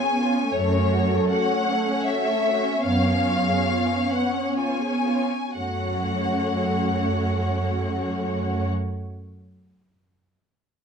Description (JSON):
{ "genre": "classical, slow romantic movement for string orchestra", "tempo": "58-86 BPM", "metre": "3/4", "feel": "rubato", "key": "F# minor", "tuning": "A4 = 440 Hz", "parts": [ { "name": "warm symphonic violin section", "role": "melody", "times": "0.0-8.7 s", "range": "C#5 to G#5", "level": "-27 LUFS", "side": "left 4 dB", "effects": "none" }, { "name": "warm symphonic violin section", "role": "second line", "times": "0.0-8.7 s", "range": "A3 to C#5", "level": "-29 LUFS", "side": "left 1 dB", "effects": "none" }, { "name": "warm symphonic viola section", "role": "accompaniment", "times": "0.0-8.7 s", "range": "A3 to C#4", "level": "-26 LUFS", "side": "right 2 dB", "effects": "none" }, { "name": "rich symphonic cello section", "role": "bass", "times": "0.5-8.7 s", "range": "F#2", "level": "-26 LUFS", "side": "right 2 dB", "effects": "none" } ], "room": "moderate large studio reverb, RT60 1.1 s", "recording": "dark, warm production", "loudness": "-21 LUFS", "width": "side -6 dB against mid", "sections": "0.0-5.6 A section; 5.6-10.8 B section", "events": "slowing down 0.0-5.6", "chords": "0.0 C#7; 0.5 F#m; 2.9 C#7/F#; 5.6 F#m" }